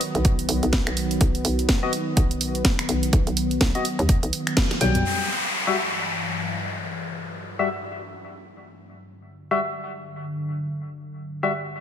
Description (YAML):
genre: bass house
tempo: 125 BPM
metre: 4/4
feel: swing 59% on 16ths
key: E minor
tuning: A4 = 445 Hz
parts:
  - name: sweeping resonant pad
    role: sustained chords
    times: 0.0-11.8 s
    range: G2 to B3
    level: -30 LUFS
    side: equal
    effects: chorus, sidechain pumping
  - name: house drum kit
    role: drums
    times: 0.0-5.0 s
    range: finger snaps, hi-hat, snare drum, toms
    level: -26 LUFS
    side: right 1 dB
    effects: none
  - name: hollow knocking FM bass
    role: bass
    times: 0.1-5.0 s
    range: B1 to D#2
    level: -26 LUFS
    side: equal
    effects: tube saturation, sidechain pumping
  - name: electronic kick drum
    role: drums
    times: 0.2-4.7 s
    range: none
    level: -20 LUFS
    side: equal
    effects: none
  - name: percussive organ stab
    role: stabs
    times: 1.8-11.5 s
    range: F#3 to G5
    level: -26 LUFS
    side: left 4 dB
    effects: wide subtle chorus, sidechain pumping, dub echo
  - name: downlifter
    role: sound effects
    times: 5.0-8.9 s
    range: none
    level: -28 LUFS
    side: left 2 dB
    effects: none
room: light reverb, digital ambience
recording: none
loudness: -21 LUFS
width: side -9 dB against mid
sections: 0.0-5.0 A section; 5.0-11.8 B section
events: band accent 4.6; drum fill 4.7-5.0; filter sweep on analog synth pad 5.0-11.8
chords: 0.0 B; 5.0 Emadd9